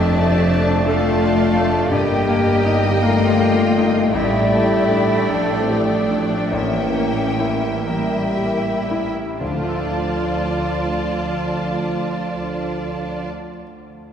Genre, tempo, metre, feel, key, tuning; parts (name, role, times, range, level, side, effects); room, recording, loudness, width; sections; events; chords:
classical, romantic movement for piano and orchestra; 38-60 BPM; 4/4; rubato; D minor; A4 = 440 Hz
clear grand piano; melody; 0.0-14.1 s; A1 to F5; -23 LUFS; left 2 dB
warm symphonic violin section; melody; 0.0-13.3 s; G5 to A5; -30 LUFS; left 2 dB
concert flute; second line; 0.0-13.3 s; C5 to G5; -28 LUFS; left 1 dB
mellow clarinet; second line; 0.0-13.3 s; A4 to Eb5; -30 LUFS; left 3 dB
warm studio violin section; second line; 0.0-13.3 s; D5 to E5; -30 LUFS; left 3 dB
mellow bassoon; accompaniment; 0.0-13.3 s; F3 to A3; -29 LUFS; right 2 dB
rich symphonic viola section; accompaniment; 0.0-13.3 s; A3 to F4; -27 LUFS; right 2 dB
mellow French horn section; sustained chords; 0.0-13.3 s; E3 to Bb3; -23 LUFS; left 2 dB
rich chamber cello section; bass; 0.0-13.3 s; C4 to G4; -27 LUFS; right 1 dB
warm studio double bass section; bass; 0.0-13.3 s; F1 to D2; -26 LUFS; right 2 dB
timpani; percussion; 9.4-13.3 s; D3; -37 LUFS; equal
wet church reverb, RT60 3.3 s; recorded in a church or concert hall; -16 LUFS; side -8 dB against mid
0.0-9.4 A section; 9.4-14.1 B section
slowing down 0.0-9.4
0.0 Dm/F; 1.9 Eb/G; 4.1 A7sus4; 6.5 A7b9; 9.4 Dm